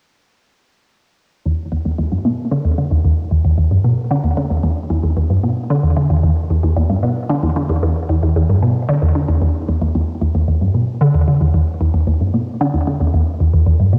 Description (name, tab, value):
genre	ambient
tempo	113 BPM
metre	4/4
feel	straight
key	E minor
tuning	A4 = 440 Hz
part	resonant blip pluck	solo	1.5-14.0 s	E2 to D3	-16 LUFS	equal	phaser, analog chorus, cassette tape, tape echo
room	moderate spring reverb, RT60 2.9 s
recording	home recording on cassette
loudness	-17 LUFS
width	mono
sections	1.5-9.9 A section; 9.9-14.0 B section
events	none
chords	none